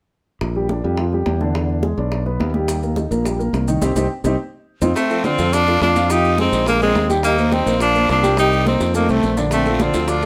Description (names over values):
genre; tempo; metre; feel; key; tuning
Afro-Cuban jazz; 211 BPM; 4/4; straight; Bb major; A4 = 440 Hz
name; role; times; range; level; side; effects
modern bright fingered electric bass; bass; 0.4-10.3 s; Bb1 to F2; -23 LUFS; equal; none
bongos; percussion; 0.4-10.2 s; none; -32 LUFS; equal; none
congas; percussion; 0.4-10.3 s; none; -29 LUFS; equal; none
warm concert grand piano; accompaniment; 0.6-10.3 s; D3 to G5; -23 LUFS; equal; none
maracas; percussion; 2.7-10.3 s; none; -37 LUFS; equal; none
bright tenor saxophone; melody; 5.0-10.3 s; Ab3 to Eb4; -21 LUFS; equal; none
breathy bright jazz flute; second line; 5.0-10.3 s; C4 to G4; -27 LUFS; equal; none
guiro; percussion; 5.0-10.3 s; none; -36 LUFS; equal; none
room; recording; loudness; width
light reverb; none; -18 LUFS; mono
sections
0.4-5.0 A section; 5.0-10.3 B section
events
drum fill 3.8-5.0, 8.8-9.5; band accent 3.8-5.0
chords
0.4 Bb6; 1.5 E7; 2.7 Eb6; 3.8 Cm; 4.4 F5; 5.0 F6; 6.1 Fm9; 6.7 Bbsus2; 7.2 Eb69; 8.4 Cm7; 8.9 F; 9.5 Bbmaj9